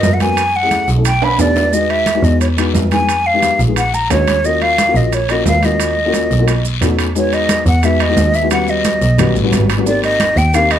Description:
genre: Afro-Cuban jazz.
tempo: 177 BPM.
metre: 4/4.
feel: straight.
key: unclear.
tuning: A4 = 436 Hz.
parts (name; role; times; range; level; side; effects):
breathy hollow jazz flute; melody; 0.0-10.8 s; Db5 to B5; -15 LUFS; equal; none.
dark upright piano; accompaniment; 0.0-10.7 s; G3 to A4; -19 LUFS; left 5 dB; none.
clear double bass; bass; 0.0-10.8 s; Ab1 to Gb2; -16 LUFS; right 1 dB; none.
congas; percussion; 0.0-10.8 s; none; -23 LUFS; right 1 dB; none.
guiro; percussion; 0.0-10.8 s; none; -28 LUFS; left 8 dB; none.
maracas; percussion; 0.0-10.8 s; none; -29 LUFS; right 9 dB; none.
timbales; percussion; 0.0-10.8 s; none; -22 LUFS; right 7 dB; none.
room: moderate club reverb, RT60 0.6 s.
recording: none.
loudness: -12 LUFS.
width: side -10 dB against mid.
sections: 0.0-7.2 A section; 7.2-10.8 B section.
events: drum fill 1.2-1.7.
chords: 0.4 Gbm7; 1.1 B7alt; 1.7 Emaj7; 3.1 Fm7b5; 3.8 Bb7alt; 4.4 Ebm7; 6.5 B7; 7.2 Emaj9; 8.5 Eb7alt; 9.9 Abmaj9.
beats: 0.03 | 0.37 0.71 1.05 1.39 | 1.73 2.07 2.41 2.75 | 3.09 3.42 3.76 4.10 | 4.44 4.78 5.12 5.46 | 5.80 6.14 6.48 6.82 | 7.16 7.49 7.83 8.17 | 8.51 8.85 9.18 9.52 | 9.86 10.20 10.54.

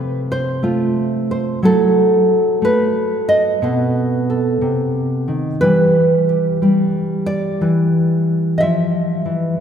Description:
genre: solo jazz.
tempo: 60 BPM.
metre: 4/4.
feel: swing 66% on 8ths.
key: unclear.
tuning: A4 = 440 Hz.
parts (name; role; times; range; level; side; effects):
nylon-string guitar; solo; 0.0-9.6 s; B2 to E5; -14 LUFS; equal; none.
room: wet church reverb, RT60 3.1 s.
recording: recorded in a church or concert hall.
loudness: -14 LUFS.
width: side -8 dB against mid.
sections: 0.0-9.6 A section.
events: none.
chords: 0.0 Fmaj7; 1.6 F#m7; 3.6 B7b9; 5.6 Em7.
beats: 0.64 | 1.63 2.63 3.62 4.62 | 5.61 6.61 7.60 8.60 | 9.59.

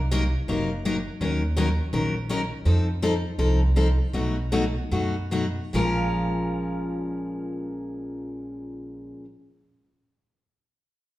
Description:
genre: acoustic string swing (jazz manouche).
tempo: 141-166 BPM.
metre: 4/4.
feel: swing 61% on 8ths.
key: Bb minor.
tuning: A4 = 440 Hz.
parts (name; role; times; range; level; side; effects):
upright bass; bass; 0.0-9.1 s; Gb1 to F#2; -25 LUFS; right 1 dB; none.
picked steel-string acoustic guitar; accompaniment; 0.1-9.3 s; Bb2 to Bb4; -26 LUFS; left 1 dB; none.
room: wet large studio reverb, RT60 1.3 s.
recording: band playing live in one room.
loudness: -23 LUFS.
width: side -16 dB against mid.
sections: 0.0-5.7 A section; 5.7-9.1 B section.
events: slowing down 2.7-5.7.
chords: 0.0 Cm7b5; 1.2 Ebm7; 2.7 F7; 4.1 B7; 5.7 Bbm7.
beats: 0.12 0.48 0.84 | 1.20 1.57 1.93 2.29 | 2.65 3.01 3.38 3.75 | 4.13 4.51 4.91 5.31 | 5.73 6.16 6.58 7.01 | 7.44 7.86 8.29 8.71.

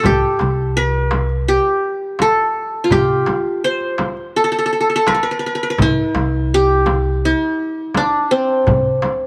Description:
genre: Arabic maqam ensemble.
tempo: 84 BPM.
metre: 4/4.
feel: straight.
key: C maqam rast.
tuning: A4 = 440 Hz.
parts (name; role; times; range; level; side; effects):
qanun; melody; 0.0-9.3 s; C4 to C5; -18 LUFS; equal; none.
upright bass; bass; 0.0-9.0 s; C2 to C3; -22 LUFS; equal; none.
darbuka; percussion; 0.0-9.2 s; none; -26 LUFS; equal; none.
frame drum; percussion; 0.0-9.2 s; none; -24 LUFS; equal; none.
room: light reverb, small room ambience.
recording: none.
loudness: -17 LUFS.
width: mono.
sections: 0.0-9.3 A section.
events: none.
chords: none.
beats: | 0.04 0.76 1.48 2.20 | 2.92 3.64 4.35 5.07 | 5.79 6.51 7.23 7.95 | 8.67.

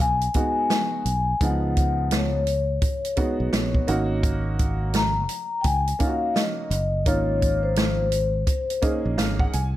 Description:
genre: hip hop, jazz-hop.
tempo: 85 BPM.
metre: 4/4.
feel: swing 63% on 16ths.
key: Db mixolydian.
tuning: A4 = 440 Hz.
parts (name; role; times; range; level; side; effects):
vibraphone with soft mallets; melody; 0.0-9.0 s; C5 to Bb5; -26 LUFS; left 4 dB; none.
fingered electric bass; bass; 0.0-9.8 s; Gb1 to Db2; -25 LUFS; equal; none.
open jazz drum kit; drums; 0.2-9.7 s; hi-hat, kick drum, snare drum; -25 LUFS; right 1 dB; none.
warm upright piano; accompaniment; 0.3-9.8 s; F3 to Ab5; -28 LUFS; right 3 dB; none.
room: light reverb, small room ambience.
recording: none.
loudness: -21 LUFS.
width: side -14 dB against mid.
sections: 0.0-9.8 A section.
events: upright piano fill 8.5-9.8.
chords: 0.0 Db9sus4; 3.9 Ab9sus4.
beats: 0.00 0.71 | 1.41 2.12 2.82 3.53 | 4.24 4.94 5.65 6.35 | 7.06 7.76 8.47 9.18.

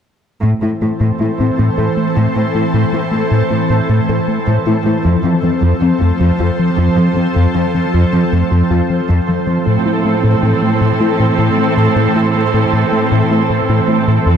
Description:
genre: cinematic, hybrid orchestral and electronic film score.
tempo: 52 BPM (dotted quarters).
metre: 6/8.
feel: straight.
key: A minor.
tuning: A4 = 440 Hz.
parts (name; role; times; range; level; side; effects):
ethereal airy pad; sustained chords; 0.7-14.4 s; E3 to C5; -17 LUFS; equal; ensemble chorus, built-in reverb.
harp-like synth pluck; arpeggios; 0.4-14.4 s; F3 to A4; -20 LUFS; left 1 dB; chorus, phaser, ping-pong delay.
round analog bass; riff; 0.4-14.4 s; F2 to A3; -15 LUFS; left 2 dB; none.
rich chamber cello section; bass; 0.4-14.4 s; F2 to A2; -20 LUFS; right 3 dB; none.
warm symphonic viola section; accompaniment; 9.7-14.4 s; C4 to A4; -18 LUFS; right 3 dB; none.
room: light reverb.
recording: close, detailed microphones.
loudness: -12 LUFS.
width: side -8 dB against mid.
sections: 0.4-9.7 A section; 9.7-14.4 B section.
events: none.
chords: 0.4 Am; 5.0 F; 9.7 Am.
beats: | 0.43 1.58 | 2.74 3.89 | 5.04 6.20 | 7.35 8.51 | 9.66 10.81 | 11.97 13.12 | 14.28.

